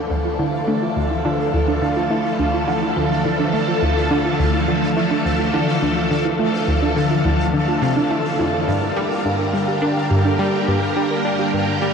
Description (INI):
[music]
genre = ambient, sequencer-driven space music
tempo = 105 BPM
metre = 4/4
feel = straight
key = D minor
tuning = A4 = 441 Hz
[part]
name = phased string machine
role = sustained chords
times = 0.0-11.9 s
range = D3 to Bb4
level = -20 LUFS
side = equal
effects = ensemble chorus, phaser
[part]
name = soft round pluck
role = arpeggios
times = 0.0-11.9 s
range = D4 to Bb4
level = -25 LUFS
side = right 2 dB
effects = chorus, auto-pan, ping-pong delay
[part]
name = analog pluck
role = riff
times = 0.0-11.9 s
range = D2 to D4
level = -21 LUFS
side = equal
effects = chorus, phaser, ping-pong delay
[part]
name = pulsing gated texture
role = texture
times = 0.0-11.9 s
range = F5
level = -29 LUFS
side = right 1 dB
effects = chorus, built-in reverb
[sound]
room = wet shimmer reverb, RT60 7.9 s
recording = worn, warbling old tape, cassette tape, warbly pitch drift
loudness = -17 LUFS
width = side -6 dB against mid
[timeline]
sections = 0.0-11.9 A section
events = none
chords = 0.0 Dmadd9; 8.7 Gm